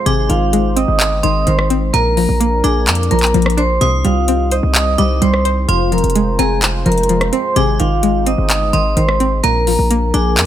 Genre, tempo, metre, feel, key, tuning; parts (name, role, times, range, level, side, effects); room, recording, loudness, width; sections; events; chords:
hip hop, trap; 128 BPM; 4/4; half-time; A4 = 440 Hz
vibraphone with medium hard mallets; melody; 0.0-10.4 s; F4 to Eb6; -18 LUFS; equal
string-like resonator pluck; accompaniment; 0.0-10.5 s; F2 to C5; -19 LUFS; left 1 dB; chorus
dark analog pad; sustained chords; 0.0-10.5 s; F3 to C5; -24 LUFS; right 1 dB; chorus
metallic FM bell; second line; 0.1-10.5 s; Bb5 to Eb6; -24 LUFS; right 5 dB; chorus, digital delay
hard-hitting 808-style bass; bass; 0.1-10.5 s; F1 to F2; -17 LUFS; equal
trap drum kit; drums; 0.1-10.5 s; handclaps, hi-hat, rim click; -18 LUFS; equal
little or no reverb; -12 LUFS; side -11 dB against mid
0.0-10.5 A section
0.1 Ab; 1.9 Bb; 3.8 Cm; 5.7 Fm; 7.6 Ab; 9.4 Bb